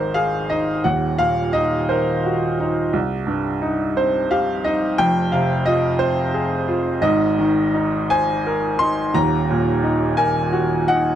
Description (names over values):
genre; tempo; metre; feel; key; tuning
neoclassical minimalist piano; 58 BPM (dotted quarters); 6/8; rubato; Ab major; A4 = 444 Hz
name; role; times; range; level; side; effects
clear upright piano; solo; 0.0-11.2 s; Eb1 to C6; -17 LUFS; equal; none
room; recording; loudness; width
little or no reverb; dry, close 1970s-style studio recording; -17 LUFS; side -10 dB against mid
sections
0.0-11.2 A section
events
none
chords
0.0 Absus2; 0.8 Ebm; 2.9 Cm; 5.0 Fm; 7.0 Abadd9; 9.1 Ebm